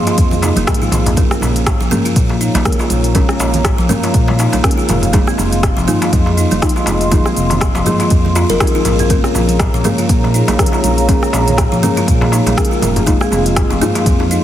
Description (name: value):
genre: afro house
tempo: 121 BPM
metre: 4/4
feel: swing 57% on 16ths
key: Bb minor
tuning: A4 = 440 Hz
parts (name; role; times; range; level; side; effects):
- dark analog pad; sustained chords; 0.0-14.4 s; Ab4 to C6; -22 LUFS; equal; chorus, sidechain pumping
- buzzing kalimba; arpeggios; 0.0-14.4 s; F3 to Bb4; -18 LUFS; right 1 dB; sidechain pumping, digital delay
- deep mellow chord stab; stabs; 0.0-14.4 s; Db4 to Bb4; -21 LUFS; left 2 dB; chorus, phaser, sidechain pumping, digital delay
- afro-pop drum kit; drums; 0.1-14.4 s; cabasa, hi-hat, rim click, toms; -20 LUFS; equal; small room ambience
- congas; percussion; 0.1-14.3 s; none; -24 LUFS; right 3 dB; none
- darbuka; percussion; 0.1-14.3 s; none; -24 LUFS; left 2 dB; none
- dark detuned saw bass; bass; 0.2-14.4 s; F1 to Bb2; -17 LUFS; equal; sidechain pumping
- electronic kick drum; drums; 0.2-14.2 s; none; -15 LUFS; equal; small room ambience
room: light reverb, digital ambience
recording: heavily compressed radio sound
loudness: -11 LUFS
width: side -11 dB against mid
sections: 0.0-14.4 A section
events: filter sweep on synth stab 0.0-14.4; drum fill 0.4-1.2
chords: 0.0 Fm7; 1.2 Bbm7; 5.1 Fm7; 9.1 Bbm7; 13.1 Fm7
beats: 0.18 0.68 | 1.17 1.67 2.16 2.66 | 3.15 3.65 4.15 4.64 | 5.14 5.63 6.13 6.63 | 7.12 7.62 8.11 8.61 | 9.11 9.60 10.10 10.59 | 11.09 11.58 12.08 12.58 | 13.07 13.57 14.06